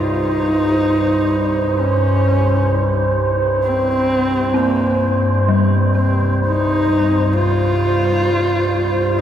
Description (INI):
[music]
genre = dark ambient drone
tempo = 64 BPM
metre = 4/4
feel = straight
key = C in sen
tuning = A4 = 440 Hz
[part]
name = dark horsehead fiddle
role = melody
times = 0.0-9.2 s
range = Bb3 to F4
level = -19 LUFS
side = equal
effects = tape echo
[part]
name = dark detuned synth bell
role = arpeggios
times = 0.0-9.2 s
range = G3 to G4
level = -24 LUFS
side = left 1 dB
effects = chorus, phaser, tape echo
[part]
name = organ-like drone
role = drone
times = 0.0-9.2 s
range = C2 to G2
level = -18 LUFS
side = left 1 dB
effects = ensemble chorus, built-in reverb
[part]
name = wind-like tuned noise texture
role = texture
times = 0.0-9.2 s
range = C5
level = -21 LUFS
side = right 2 dB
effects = built-in reverb
[sound]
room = wet cathedral reverb, RT60 6.5 s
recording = none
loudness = -14 LUFS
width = side -10 dB against mid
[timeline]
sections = 0.0-9.2 A section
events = none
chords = 0.0 C5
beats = 0.79 | 1.73 2.66 3.60 4.54 | 5.48 6.41 7.35 8.29